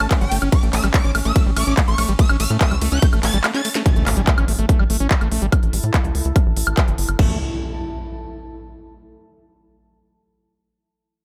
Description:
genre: psychedelic trance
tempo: 144 BPM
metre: 4/4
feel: straight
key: A major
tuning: A4 = 440 Hz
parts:
  - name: swarming rave lead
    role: melody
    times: 0.0-3.7 s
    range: G5 to A6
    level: -29 LUFS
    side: equal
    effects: chorus, phaser, sidechain pumping, tape echo
  - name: overtone-sweeping drone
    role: sustained chords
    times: 0.0-3.9 s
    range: Db4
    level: -35 LUFS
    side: equal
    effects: chorus, built-in reverb, sidechain pumping
  - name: overdriven acid bass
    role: riff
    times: 0.0-7.4 s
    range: G3 to Db4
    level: -28 LUFS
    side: equal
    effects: sidechain pumping, tape echo
  - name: tight sequencer bass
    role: bass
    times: 0.0-7.4 s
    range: G1 to A2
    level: -23 LUFS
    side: equal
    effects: none
  - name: techno drum kit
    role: drums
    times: 0.0-7.3 s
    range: crash cymbal, handclaps, hi-hat, ride cymbal, snare drum, woodblock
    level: -26 LUFS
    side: equal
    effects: none
  - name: electronic kick drum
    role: drums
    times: 0.1-7.3 s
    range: none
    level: -19 LUFS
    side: equal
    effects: none
  - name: metallic wobble bass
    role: second line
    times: 1.6-3.4 s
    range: A3 to Db4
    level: -39 LUFS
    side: equal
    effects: none
  - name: impact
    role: sound effects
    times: 3.9-8.9 s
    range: none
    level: -31 LUFS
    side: equal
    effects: none
  - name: deep dark ambient pad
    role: texture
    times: 5.0-8.8 s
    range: E4 to A5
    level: -35 LUFS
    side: equal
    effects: chorus, built-in reverb, sidechain pumping
room: digital ambience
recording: none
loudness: -18 LUFS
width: mono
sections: 0.0-3.9 A section; 3.9-7.2 B section; 7.2-8.9 C section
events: drop 0.0-3.9; break 3.4-3.9; drum fill 3.4-3.9; impact 3.9-5.5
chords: 0.0 G(b5, no3); 7.2 A5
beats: 0.11 | 0.52 0.94 1.36 1.77 | 2.19 2.61 3.02 3.44 | 3.86 4.27 4.69 5.11 | 5.52 5.94 6.36 6.77 | 7.19 7.61 8.02 8.44

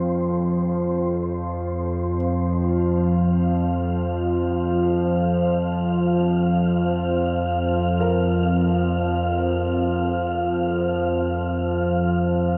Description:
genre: dark ambient drone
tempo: free time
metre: none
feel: none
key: unclear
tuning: A4 = 440 Hz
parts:
  - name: deep dark ambient pad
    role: sustained chords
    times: 0.0-12.6 s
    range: C4 to C5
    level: -31 LUFS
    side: equal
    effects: chorus, built-in reverb
  - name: dark concert grand piano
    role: arpeggios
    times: 0.0-12.6 s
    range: Bb4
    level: -36 LUFS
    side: equal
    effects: none
  - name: analog drone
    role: drone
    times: 0.0-12.6 s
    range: F2 to F3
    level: -23 LUFS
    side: equal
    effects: chorus
  - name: wind-like tuned noise texture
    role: texture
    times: 0.0-12.6 s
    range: C5 to F5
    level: -34 LUFS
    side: equal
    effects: built-in reverb
room: wet huge ambient reverb, RT60 8.9 s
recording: dark, warm production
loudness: -22 LUFS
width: mono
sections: 0.0-12.6 A section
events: fade-in on ambient pad 0.0-12.6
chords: 0.0 F5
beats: free time

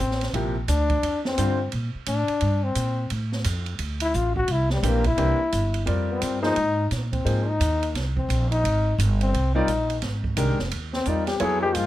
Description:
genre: modal jazz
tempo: 173 BPM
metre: 4/4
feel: swing 63% on 8ths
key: G dorian, F dorian from 5.9 s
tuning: A4 = 441 Hz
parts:
  - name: clear trombone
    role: second line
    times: 0.0-11.9 s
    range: G3 to Ab4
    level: -25 LUFS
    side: left 3 dB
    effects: none
  - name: upright bass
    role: bass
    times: 0.0-11.9 s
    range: F1 to Bb2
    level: -24 LUFS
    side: right 1 dB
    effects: none
  - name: open jazz drum kit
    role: drums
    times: 0.1-11.9 s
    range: hi-hat, kick drum, ride cymbal, snare drum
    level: -32 LUFS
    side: right 3 dB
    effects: none
  - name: warm concert grand piano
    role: accompaniment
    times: 0.3-1.6, 4.8-7.5, 9.6-11.9 s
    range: C3 to D5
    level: -27 LUFS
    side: left 1 dB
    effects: none
room: little or no reverb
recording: close, detailed microphones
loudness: -21 LUFS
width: side -14 dB against mid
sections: 0.0-5.9 A section; 5.9-11.9 A section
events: trombone solo 0.0-11.9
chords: 0.3 Gm7; 3.1 Dm; 4.5 C7; 5.9 Fm9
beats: 0.00 | 0.34 0.69 1.03 1.38 | 1.73 2.07 2.42 2.76 | 3.11 3.45 3.80 4.15 | 4.49 4.84 5.18 5.53 | 5.88 6.22 6.57 6.91 | 7.26 7.61 7.95 8.30 | 8.64 8.99 9.34 9.68 | 10.03 10.37 10.72 11.06 | 11.41 11.76

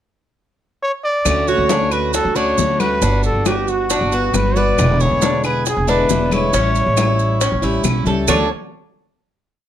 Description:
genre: latin, Cuban son and guajira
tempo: 137 BPM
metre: 4/4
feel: straight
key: D major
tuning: A4 = 440 Hz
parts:
  - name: breathy trumpet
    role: melody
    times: 0.8-8.5 s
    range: F#4 to D5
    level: -19 LUFS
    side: equal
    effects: none
  - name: picked plugged-in acoustic archtop guitar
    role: accompaniment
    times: 1.2-8.5 s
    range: B2 to F#4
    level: -22 LUFS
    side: left 3 dB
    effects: none
  - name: upright bass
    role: bass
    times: 1.3-8.5 s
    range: E1 to D2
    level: -20 LUFS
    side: right 1 dB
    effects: none
  - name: bongos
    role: percussion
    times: 1.3-8.4 s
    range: none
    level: -26 LUFS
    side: left 6 dB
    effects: none
  - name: claves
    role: percussion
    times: 1.3-8.4 s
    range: none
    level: -28 LUFS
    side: left 10 dB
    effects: none
  - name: congas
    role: percussion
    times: 1.3-8.4 s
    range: none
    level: -26 LUFS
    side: left 4 dB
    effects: none
  - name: maracas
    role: percussion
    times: 1.3-8.4 s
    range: none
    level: -26 LUFS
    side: right 10 dB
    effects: none
  - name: Cuban tres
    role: arpeggios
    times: 1.5-8.5 s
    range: C#4 to C#5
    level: -22 LUFS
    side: right 3 dB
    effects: none
room: light reverb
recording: close, detailed microphones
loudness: -14 LUFS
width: side -10 dB against mid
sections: 0.0-1.3 pickup bar; 1.3-8.3 A section; 8.3-9.7 final chord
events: none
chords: 0.0 N.C.; 1.3 Dmaj7; 3.0 Gmaj7; 4.8 E7; 6.5 A7; 8.3 Dmaj7(no3)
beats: 0.38 0.82 | 1.26 1.70 2.14 2.58 | 3.03 3.47 3.91 4.35 | 4.79 5.22 5.66 6.10 | 6.54 6.97 7.41 7.84 | 8.28

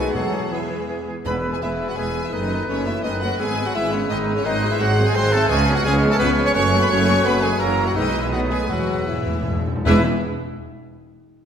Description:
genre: quick classical-period movement for symphony orchestra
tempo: 151-173 BPM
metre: 3/4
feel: rubato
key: E major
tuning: A4 = 445 Hz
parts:
  - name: rich studio violin section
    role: melody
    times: 0.0-10.1 s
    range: C#5 to C#6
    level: -29 LUFS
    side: left 2 dB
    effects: none
  - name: clear oboe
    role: second line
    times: 0.0-10.0 s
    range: G#4 to C#5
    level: -30 LUFS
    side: equal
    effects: none
  - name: dark studio violin section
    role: second line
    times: 0.0-10.1 s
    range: B3 to C#5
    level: -30 LUFS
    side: left 4 dB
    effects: none
  - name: mellow clarinet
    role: second line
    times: 0.0-10.0 s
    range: E4 to A4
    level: -31 LUFS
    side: left 2 dB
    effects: none
  - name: silver concert flute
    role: second line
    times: 0.0-10.1 s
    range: G#4 to F#6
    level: -31 LUFS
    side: left 1 dB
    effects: none
  - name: clear studio viola section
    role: accompaniment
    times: 0.0-10.1 s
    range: D#3 to B#3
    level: -29 LUFS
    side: equal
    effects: none
  - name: dark bassoon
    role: accompaniment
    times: 0.0-10.0 s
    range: E3 to B3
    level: -29 LUFS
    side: right 2 dB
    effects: none
  - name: warm French horn section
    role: sustained chords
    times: 0.0-10.0 s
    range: C#3 to E4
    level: -28 LUFS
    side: left 2 dB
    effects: none
  - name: rich studio cello section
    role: bass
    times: 0.0-10.1 s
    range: E2 to G#4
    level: -26 LUFS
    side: right 1 dB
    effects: none
  - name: rich studio double bass section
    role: bass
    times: 0.0-10.1 s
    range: E1 to E2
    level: -25 LUFS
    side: right 2 dB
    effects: none
  - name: timpani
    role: percussion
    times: 0.1-1.8, 8.7-10.0 s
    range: E2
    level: -27 LUFS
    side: left 1 dB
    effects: none
  - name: mellow trumpet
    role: stabs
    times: 1.3-10.0 s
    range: C#4 to C#5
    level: -26 LUFS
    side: right 2 dB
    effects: none
room: wet scoring stage reverb, RT60 1.6 s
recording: none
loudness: -18 LUFS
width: side -8 dB against mid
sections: 0.0-1.3 A section; 1.3-9.9 A section; 9.9-11.0 B section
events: slowing down 7.1-9.9; timpani fill 8.7-9.9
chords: 0.1 E; 2.3 B7/F#; 3.4 E/G#; 4.5 G#7; 5.5 C#7; 6.5 F#m; 7.6 F#7; 8.0 E/B; 8.3 B7; 8.7 E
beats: | 0.15 0.52 0.89 | 1.26 1.63 1.98 | 2.33 2.69 3.05 | 3.40 3.75 4.10 | 4.45 4.80 5.15 | 5.50 5.85 6.19 | 6.55 6.90 7.25 | 7.60 7.96 8.32 | 8.70 9.09 9.48 | 9.87

